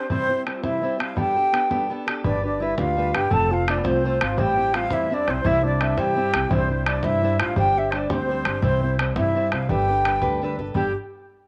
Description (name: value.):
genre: celtic folk, Celtic jig.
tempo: 113 BPM (dotted quarters).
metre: 6/8.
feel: straight.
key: G mixolydian.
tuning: A4 = 441 Hz.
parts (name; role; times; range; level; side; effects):
baroque flute; melody; 0.0-10.9 s; C5 to A5; -26 LUFS; equal; none.
alto flute; second line; 0.0-10.9 s; B3 to A4; -30 LUFS; equal; none.
fingerpicked steel-string acoustic guitar; accompaniment; 0.0-10.9 s; A2 to C5; -30 LUFS; equal; none.
bodhran; percussion; 0.1-10.9 s; none; -29 LUFS; equal; none.
upright bass; bass; 2.2-10.9 s; F1 to G2; -29 LUFS; equal; none.
room: moderate spring reverb, RT60 1.3 s, small room ambience.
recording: none.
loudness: -22 LUFS.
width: mono.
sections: 0.0-2.2 A section; 2.2-10.8 A section.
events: none.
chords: 0.1 C; 1.2 Gadd9; 2.2 G; 3.3 F; 4.4 Am7; 5.4 C; 6.5 Cadd9; 7.6 Gsus4; 8.6 C; 9.7 Gadd9.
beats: | 0.10 0.64 | 1.18 1.71 | 2.25 2.78 | 3.31 3.85 | 4.38 4.91 | 5.44 5.97 | 6.50 7.03 | 7.57 8.10 | 8.63 9.16 | 9.69 10.22 | 10.75.